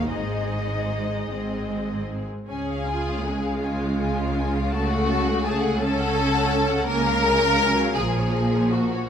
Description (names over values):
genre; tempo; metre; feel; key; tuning
classical, slow romantic movement for string orchestra; 50-56 BPM (dotted quarters); 6/8; rubato; Db major; A4 = 440 Hz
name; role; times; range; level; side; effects
warm studio violin section; melody; 0.0-9.1 s; Bb4 to A5; -33 LUFS; left 3 dB; none
warm symphonic violin section; second line; 0.0-9.1 s; F4 to C5; -25 LUFS; left 2 dB; none
rich symphonic viola section; accompaniment; 0.0-9.1 s; F3 to F4; -28 LUFS; equal; none
rich symphonic cello section; bass; 0.0-9.1 s; Ab2 to Db3; -28 LUFS; right 1 dB; none
rich symphonic double bass section; bass; 0.0-9.1 s; Ab1 to Db2; -28 LUFS; right 2 dB; none
room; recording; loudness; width
moderate scoring stage reverb, RT60 1.7 s; none; -21 LUFS; side -8 dB against mid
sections
0.0-2.5 A section; 2.5-9.1 A section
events
none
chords
0.1 Ab5; 1.3 Ab; 2.5 Db; 4.7 Gbm/Db; 6.9 Db; 8.0 Bbm7